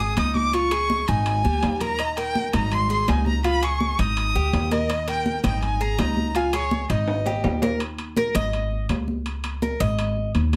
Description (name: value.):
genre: latin, Cuban son and guajira.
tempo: 165 BPM.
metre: 4/4.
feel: straight.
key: unclear.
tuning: A4 = 440 Hz.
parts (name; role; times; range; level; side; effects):
clear erhu; melody; 0.0-7.6 s; Db5 to Eb6; -28 LUFS; equal; none.
Cuban tres; arpeggios; 0.0-10.3 s; G3 to Eb5; -30 LUFS; equal; none.
upright bass; bass; 0.0-10.6 s; Ab1 to Eb2; -27 LUFS; equal; none.
congas; percussion; 0.2-10.6 s; none; -30 LUFS; equal; none.
timbales; percussion; 0.2-10.6 s; none; -34 LUFS; equal; none.
room: light reverb.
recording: none.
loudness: -23 LUFS.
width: mono.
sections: 0.0-7.8 A section; 7.8-10.6 B section.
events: drum fill 1.4-2.0, 7.1-7.8; Cuban tres solo 7.8-10.6.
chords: 0.0 Ab5; 0.5 Db; 1.3 Ab5; 2.0 Eb; 2.7 Ab5; 3.4 Db; 4.2 Ab5; 4.9 Eb; 5.6 Ab5; 6.4 Db; 7.1 Ab5; 7.8 Absus2; 8.5 Db5; 10.0 Ab5.